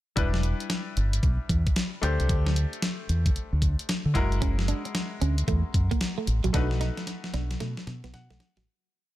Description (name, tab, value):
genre	R&B, new jack swing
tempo	113 BPM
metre	4/4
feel	swing 64% on 16ths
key	E minor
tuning	A4 = 440 Hz
part	bright grand piano	accompaniment	0.2-8.7 s	G3 to F#5	-35 LUFS	left 4 dB	none
part	deep dub fingered electric bass	bass	0.2-8.6 s	E1 to D3	-25 LUFS	equal	none
part	crisp 8-bit digital drum machine	drums	0.2-8.7 s	hi-hat, kick drum, snare drum	-28 LUFS	equal	none
part	direct-recorded clean electric guitar	riff	4.4-8.7 s	F#3 to D#4	-34 LUFS	right 8 dB	analog chorus
room	little or no reverb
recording	none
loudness	-24 LUFS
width	side -15 dB against mid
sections	0.2-8.7 verse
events	fade-out 6.5-8.7; drum fill 6.5-8.7; grand piano fill 7.9-8.7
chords	0.2 Em7; 2.0 D7sus4; 4.2 F#9; 6.5 B7